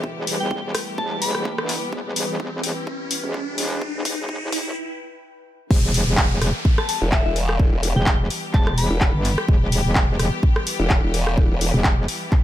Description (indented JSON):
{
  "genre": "bass house",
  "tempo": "127 BPM",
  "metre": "4/4",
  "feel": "swing 55% on 16ths",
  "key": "E minor",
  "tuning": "A4 = 440 Hz",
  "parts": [
    { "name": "bright symphonic string section", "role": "sustained chords", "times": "0.0-12.4 s", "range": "E3 to G4", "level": "-31 LUFS", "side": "left 2 dB", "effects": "sidechain pumping" },
    { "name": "metallic wobble bass", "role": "bass", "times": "0.0-12.1 s", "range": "E1 to G1", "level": "-23 LUFS", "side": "equal", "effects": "chorus, sidechain pumping, high-pass filter" },
    { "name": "electronic kick drum", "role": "drums", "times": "0.0-12.4 s", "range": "none", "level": "-19 LUFS", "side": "equal", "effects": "high-pass filter on kick, studio ambience" },
    { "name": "riser and downlifter", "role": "sound effects", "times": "0.2-9.5 s", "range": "none", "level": "-30 LUFS", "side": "right 1 dB", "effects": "none" },
    { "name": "airy breathy pad", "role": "texture", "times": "0.0-4.8 s", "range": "E4 to G5", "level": "-36 LUFS", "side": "left 2 dB", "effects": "chorus, sidechain pumping" },
    { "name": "house drum kit", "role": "drums", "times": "0.3-12.4 s", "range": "crash cymbal, handclaps, hi-hat, rim click", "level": "-25 LUFS", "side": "left 1 dB", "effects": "studio ambience" },
    { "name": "soft synth bell", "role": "melody", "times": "0.4-1.6, 6.8-9.1 s", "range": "E5 to B5", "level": "-30 LUFS", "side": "left 2 dB", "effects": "chorus, phaser, tape echo" },
    { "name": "formant-sweep wobble bass", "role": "bass", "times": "7.0-11.7 s", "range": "E1", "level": "-22 LUFS", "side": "equal", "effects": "chorus, overdrive, sidechain pumping" }
  ],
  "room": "digital ambience",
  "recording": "high-pass filter",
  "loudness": "-19 LUFS",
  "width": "side -13 dB against mid",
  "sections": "0.0-5.7 A section; 5.7-12.4 B section",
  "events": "build-up 0.0-5.7; riser 0.2-4.8; drum fill 1.9-4.8; break 4.8-5.7; drop 5.7-12.4",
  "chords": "0.0 Em"
}